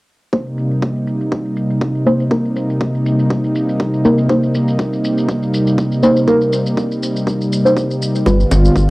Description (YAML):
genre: afro house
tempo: 121 BPM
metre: 4/4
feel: swing 54% on 16ths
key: C minor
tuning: A4 = 442 Hz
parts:
  - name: warm analog pad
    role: sustained chords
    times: 0.3-8.9 s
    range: C3 to F4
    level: -16 LUFS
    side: equal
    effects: chorus, sidechain pumping, cassette tape
  - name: deep mellow chord stab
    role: stabs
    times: 0.3-8.9 s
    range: G3 to C5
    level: -16 LUFS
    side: equal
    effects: chorus, cassette tape, sidechain pumping, analog delay
  - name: electronic kick drum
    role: drums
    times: 0.3-8.9 s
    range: none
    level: -20 LUFS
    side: equal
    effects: high-pass filter on kick, cassette tape
  - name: shaker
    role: drums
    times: 0.3-8.9 s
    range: none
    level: -31 LUFS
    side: left 1 dB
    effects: low-pass filter on perc, cassette tape
  - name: warm sub bass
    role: bass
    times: 8.3-8.9 s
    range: G1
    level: -13 LUFS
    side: equal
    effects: tube saturation, sidechain pumping
  - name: bongos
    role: percussion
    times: 8.3-8.6 s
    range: none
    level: -20 LUFS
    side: left 2 dB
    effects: none
room: light reverb, digital ambience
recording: home recording on cassette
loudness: -14 LUFS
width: side -21 dB against mid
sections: 0.3-8.9 A section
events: filter sweep on drum 0.3-8.9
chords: 0.3 Cm7; 8.3 G7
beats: | 0.33 0.83 1.32 1.82 | 2.31 2.81 3.31 3.80 | 4.30 4.79 5.29 5.79 | 6.28 6.78 7.27 7.77 | 8.27 8.76